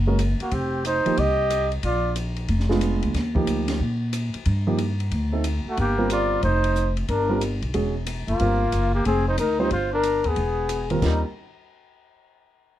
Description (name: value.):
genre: jazz, small-group swing and bop.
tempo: 183 BPM.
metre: 4/4.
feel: swing 64% on 8ths.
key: Eb major.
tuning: A4 = 443 Hz.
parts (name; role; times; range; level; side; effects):
upright bass; bass; 0.0-11.2 s; E1 to Bb2; -24 LUFS; equal; none.
warm concert grand piano; accompaniment; 0.1-11.2 s; Eb2 to C5; -25 LUFS; right 2 dB; none.
compact cocktail drum kit; drums; 0.2-11.1 s; crash cymbal, hi-hat, kick drum, ride cymbal, snare drum; -32 LUFS; left 1 dB; none.
mellow flugelhorn; melody; 0.4-2.2, 5.7-11.2 s; Eb4 to Eb5; -24 LUFS; left 2 dB; none.
warm trumpet; second line; 0.4-2.1, 5.7-11.2 s; G3 to G4; -28 LUFS; right 2 dB; none.
room: light reverb.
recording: close, detailed microphones.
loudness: -21 LUFS.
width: side -13 dB against mid.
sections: 0.0-5.8 A section; 5.8-11.0 B section; 11.0-12.3 C section.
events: none.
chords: 0.0 Gb; 0.5 Fsus2; 1.8 Bb7b9; 3.2 Ebmaj9; 5.1 D5; 5.8 Gm7; 6.4 F5; 7.1 Gm7; 7.7 E; 8.4 Gm7; 9.1 F5; 9.7 Gm; 10.4 E; 11.0 Ebadd9.